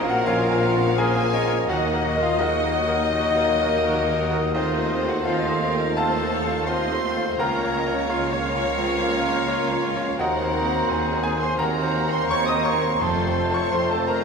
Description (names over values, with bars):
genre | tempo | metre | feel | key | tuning
classical, romantic movement for piano and orchestra | 85 BPM | 4/4 | rubato | Bb minor | A4 = 441 Hz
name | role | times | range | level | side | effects
clear baby grand piano | melody | 0.0-14.2 s | Bb1 to Eb6 | -26 LUFS | left 1 dB | none
rich chamber violin section | melody | 0.0-14.2 s | Eb5 to Eb6 | -32 LUFS | left 2 dB | none
mellow flute section | second line | 0.0-14.2 s | Eb5 to Bb5 | -30 LUFS | right 2 dB | none
rich chamber violin section | second line | 0.0-14.2 s | Gb4 to Eb5 | -30 LUFS | left 1 dB | none
warm clarinet | second line | 0.0-14.2 s | Eb4 to Eb5 | -32 LUFS | left 1 dB | none
dark bassoon | accompaniment | 0.0-14.2 s | Gb3 to Db4 | -34 LUFS | left 1 dB | none
warm chamber viola section | accompaniment | 0.0-14.2 s | Gb3 to Gb4 | -32 LUFS | right 1 dB | none
clear trombone section | sustained chords | 0.0-14.2 s | Db3 to Bb3 | -32 LUFS | right 3 dB | none
mellow French horn section | sustained chords | 0.0-14.2 s | Bb3 to Gb4 | -33 LUFS | left 6 dB | none
mellow trumpet section | stabs | 0.0-14.2 s | Bb4 to Eb5 | -29 LUFS | left 2 dB | none
clear tuba | bass | 0.0-14.2 s | F1 to Eb2 | -32 LUFS | right 2 dB | none
rich chamber double bass section | bass | 0.0-14.2 s | F1 to Eb2 | -34 LUFS | right 2 dB | none
warm symphonic cello section | bass | 0.0-14.2 s | Db2 to Bb2 | -33 LUFS | right 2 dB | none
timpani | percussion | 13.0-14.0 s | none | barely audible | none | none
room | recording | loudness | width
wet concert hall reverb, RT60 2.3 s | minimal, uncompressed stereo recording | -20 LUFS | side -5 dB against mid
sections
0.0-14.2 A section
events
none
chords
0.0 Bbm; 1.7 Ebm; 4.5 F7/Eb; 7.4 Bbm/Db; 10.2 Cm7b5/Eb; 13.0 F